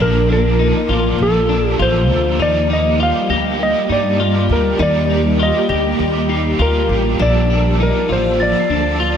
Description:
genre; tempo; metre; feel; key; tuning
dream pop; 100 BPM; 4/4; straight; Eb lydian; A4 = 441 Hz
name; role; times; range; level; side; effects
clean lap steel guitar; melody; 0.0-9.2 s; A4 to F5; -18 LUFS; equal; ping-pong delay
overdriven electric guitar; accompaniment; 0.0-9.2 s; Bb2 to A4; -25 LUFS; right 3 dB; tremolo, ensemble chorus
granular cloud pad; sustained chords; 0.0-9.2 s; F3 to D5; -20 LUFS; equal; built-in reverb
clean electric guitar; arpeggios; 0.0-9.2 s; D4 to G4; -22 LUFS; left 6 dB; ensemble chorus, ping-pong delay
upright bass; bass; 0.0-9.2 s; A1 to G2; -18 LUFS; equal; none
glockenspiel with soft plastic mallets; texture; 3.3-9.2 s; A6 to C7; -28 LUFS; left 2 dB; ping-pong delay
room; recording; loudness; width
moderate huge ambient reverb, RT60 4.3 s; none; -13 LUFS; side -8 dB against mid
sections
0.0-9.2 A section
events
none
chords
0.0 Ebmaj7; 7.2 Bbmaj7

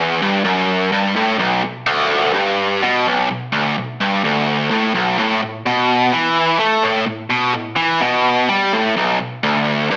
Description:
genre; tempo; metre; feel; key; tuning
rock; 127 BPM; 4/4; straight; B minor; A4 = 439 Hz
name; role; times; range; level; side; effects
distorted electric guitar; solo; 0.0-10.0 s; B1 to A3; -17 LUFS; equal; overdrive
room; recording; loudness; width
wet large studio reverb, RT60 0.9 s, digital ambience; heavily compressed radio sound, multiband compression, small speaker sound; -17 LUFS; mono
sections
0.0-1.4 A section; 1.4-10.0 B section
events
none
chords
none

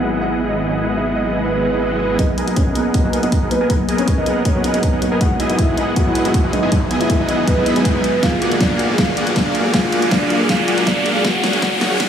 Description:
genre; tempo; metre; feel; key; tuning
future bass; 159 BPM; 4/4; half-time; G# minor; A4 = 440 Hz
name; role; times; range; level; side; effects
dark grand piano; melody; 0.0-12.1 s; B3 to F#5; -22 LUFS; right 1 dB; analog chorus, sidechain pumping, analog delay
soft round pluck; accompaniment; 0.0-8.1 s; F#3 to F#4; -24 LUFS; left 2 dB; chorus, sidechain pumping, analog delay
ethereal airy pad; sustained chords; 0.0-12.1 s; D#2 to D#5; -28 LUFS; left 1 dB; none
dense compressed supersaw; riff; 0.0-12.1 s; A#3 to B5; -21 LUFS; right 1 dB; sidechain pumping, low-pass filter, analog delay
wide detuned saw bass; bass; 0.0-2.2 s; G#1; -24 LUFS; equal; chorus, sidechain pumping
swell and riser; sound effects; 1.6-12.1 s; none; -25 LUFS; equal; none
electronic kick drum; drums; 2.2-12.1 s; none; -20 LUFS; equal; none
pop drum kit; drums; 2.2-12.1 s; hi-hat, snare drum; -22 LUFS; equal; none
thumb-piano-like synth pluck; arpeggios; 8.2-12.1 s; E#4 to D5; -28 LUFS; left 3 dB; none
room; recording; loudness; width
wet huge ambient reverb, RT60 6.7 s; dreamy mix soaked in reverb, high-pass filter, studio reverb; -14 LUFS; side -8 dB against mid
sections
0.0-2.2 A section; 2.2-12.1 B section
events
filter sweep on ambient pad 0.0-2.2; swell 1.6-2.2; build-up 2.2-12.1; riser 2.2-12.1; filter sweep on supersaw synth 2.2-12.1; filter sweep 2.2-12.1; drum fill 8.2-12.1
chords
0.0 Emaj9/G#; 2.2 G#m9; 5.2 Emaj9/G#; 8.2 A#7b13; 11.2 D#m7

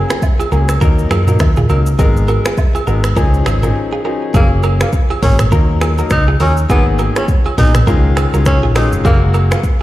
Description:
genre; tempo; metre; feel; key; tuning
afrobeats; 102 BPM; 4/4; swing 58% on 16ths; F# major; A4 = 436 Hz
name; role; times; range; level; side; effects
bright concert grand piano; accompaniment; 0.0-9.6 s; C#3 to A#4; -20 LUFS; left 4 dB; none
direct-recorded clean electric guitar; riff; 0.0-9.6 s; C#4 to A#4; -23 LUFS; right 5 dB; lush chorus, digital delay
hollow-body short-scale fingered electric bass; bass; 0.0-9.5 s; E#1 to F#2; -14 LUFS; equal; none
afro-pop drum kit; drums; 0.1-9.8 s; finger snaps, hi-hat, kick drum, rim click, shaker, toms; -15 LUFS; equal; none
woodblock and agogo bells; percussion; 0.2-9.5 s; none; -26 LUFS; right 4 dB; none
breathy tenor saxophone; melody; 4.3-9.6 s; A#3 to D#4; -20 LUFS; equal; digital delay
room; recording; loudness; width
light reverb, digital ambience; played on a big sound system in a bare room, stone room reverb; -11 LUFS; side -15 dB against mid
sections
0.0-4.3 A section; 4.3-9.8 B section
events
break 3.8-4.3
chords
0.0 F#add9; 0.8 D#m; 2.0 G#madd9; 3.2 C#add9; 4.3 F#add9; 5.5 D#m; 6.7 G#madd9; 7.9 C#add9; 9.0 F#add9

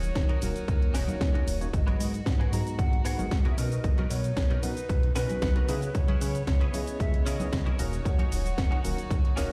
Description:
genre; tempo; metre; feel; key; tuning
nu-disco, nu disco; 114 BPM; 4/4; straight; unclear; A4 = 440 Hz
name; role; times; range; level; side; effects
hollow concert flute; melody; 0.0-9.5 s; A#4 to F#5; -40 LUFS; equal; dub echo
clear chamber violin section; sustained chords; 0.0-9.5 s; B3 to C#5; -46 LUFS; equal; sidechain pumping
direct-recorded clean electric guitar; riff; 0.0-9.5 s; B3 to G#5; -42 LUFS; equal; ensemble chorus
chorused synth bass; bass; 0.0-9.5 s; D#1 to C#3; -33 LUFS; equal; none
house drum kit; drums; 0.0-9.5 s; cabasa, hi-hat, snare drum; -40 LUFS; equal; overdrive
maracas and congas; percussion; 0.0-9.3 s; none; -40 LUFS; equal; none
electronic kick drum; drums; 0.2-9.2 s; none; -29 LUFS; equal; overdrive
bright tine electric piano; accompaniment; 0.4-9.5 s; G#3 to A#5; -40 LUFS; equal; sidechain pumping
room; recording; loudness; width
digital ambience; played on a big sound system in a bare room, large studio reverb; -27 LUFS; mono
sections
0.0-9.5 A section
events
clean electric guitar fill 4.9-5.9, 9.1-9.5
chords
0.0 D#m7; 1.7 G#m9; 3.6 Bmaj7; 5.7 C#m7; 7.8 D#m7

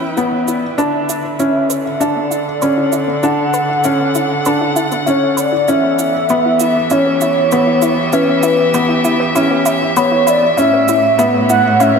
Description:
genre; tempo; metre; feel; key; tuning
piano and strings electronica; 98 BPM; 4/4; straight; E dorian; A4 = 440 Hz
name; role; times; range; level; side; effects
dark string quartet; sustained chords; 0.0-12.0 s; A2 to G5; -20 LUFS; right 2 dB; shimmer reverb
analog pluck; arpeggios; 0.0-12.0 s; B3 to B4; -21 LUFS; left 2 dB; chorus, shimmer reverb, ping-pong delay
round analog bass; bass; 0.0-12.0 s; none; barely audible; none; none
warm velvety synth lead; melody; 0.2-12.0 s; B4 to F#5; -16 LUFS; equal; chorus, shimmer reverb
felt-muted upright piano; riff; 0.2-12.0 s; B3 to D4; -16 LUFS; left 1 dB; shimmer reverb, ping-pong delay
shaker; drums; 0.2-11.9 s; none; -25 LUFS; right 10 dB; high-pass filter on perc, high-pass filter on room
room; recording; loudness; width
wet concert hall reverb, RT60 2.2 s; none; -12 LUFS; side -5 dB against mid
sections
0.0-12.0 A section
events
build-up 0.0-12.0; filter sweep on synth arpeggio sound 0.0-12.0; filter sweep on soft synth lead 0.0-12.0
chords
0.0 Em; 0.8 D; 5.7 Em; 10.6 A

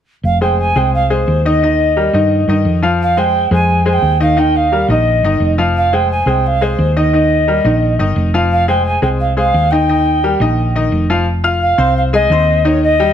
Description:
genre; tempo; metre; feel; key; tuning
latin, salsa; 174 BPM; 4/4; straight; F minor; A4 = 438 Hz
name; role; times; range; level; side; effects
alto ocarina; melody; 0.2-13.1 s; C5 to Ab5; -15 LUFS; right 1 dB; none
hollow-body short-scale fingered electric bass; bass; 0.2-13.1 s; F1 to G2; -16 LUFS; equal; none
clear grand piano; accompaniment; 0.4-13.1 s; Eb3 to F6; -16 LUFS; left 2 dB; none
room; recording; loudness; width
light reverb; close, detailed microphones; -11 LUFS; side -9 dB against mid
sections
0.2-11.3 A section; 11.3-13.1 B section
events
none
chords
0.2 Fm; 1.6 Eb; 3.0 Fm; 4.4 Eb; 5.8 Fm; 7.1 Eb; 8.5 Fm; 9.9 Eb; 11.3 Fm

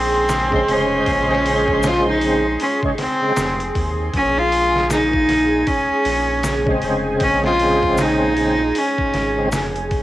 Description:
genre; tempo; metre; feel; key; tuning
trip hop; 78 BPM; 4/4; swing 60% on 16ths; Bb minor; A4 = 442 Hz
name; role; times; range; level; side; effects
clear cello; melody; 0.0-9.5 s; C4 to F4; -18 LUFS; equal; vintage 12-bit sampler grit, cassette tape, tape echo
dark analog pad; sustained chords; 0.0-10.0 s; Ab4 to C6; -25 LUFS; right 2 dB; chorus, cassette tape
round analog bass; bass; 0.0-10.0 s; F1 to Eb2; -26 LUFS; equal; none
trip hop sampler-style drum kit; drums; 0.3-10.0 s; hi-hat, kick drum, snare drum; -26 LUFS; equal; cassette tape
tube shaker; percussion; 0.3-9.7 s; none; -32 LUFS; left 4 dB; none
overdriven tonewheel organ; accompaniment; 0.5-9.5 s; Db3 to C5; -21 LUFS; equal; chorus vibrato, slow rotary speaker, tremolo, cassette tape, tape echo
room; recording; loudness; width
little or no reverb; home recording on cassette; -15 LUFS; side -15 dB against mid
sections
0.0-10.0 A section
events
none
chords
0.0 Bbm9

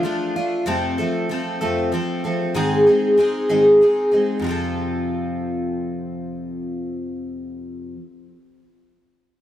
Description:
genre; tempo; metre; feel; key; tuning
rock; 64 BPM (dotted quarters); 6/8; straight; F major; A4 = 439 Hz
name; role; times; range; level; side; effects
picked twelve-string acoustic guitar; solo; 0.0-8.1 s; F2 to A4; -18 LUFS; equal; analog delay
room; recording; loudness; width
light reverb; none; -18 LUFS; side -11 dB against mid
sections
0.7-4.4 A section; 4.4-8.2 B section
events
none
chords
0.0 Dm; 0.7 F; 2.5 Ab; 4.4 F

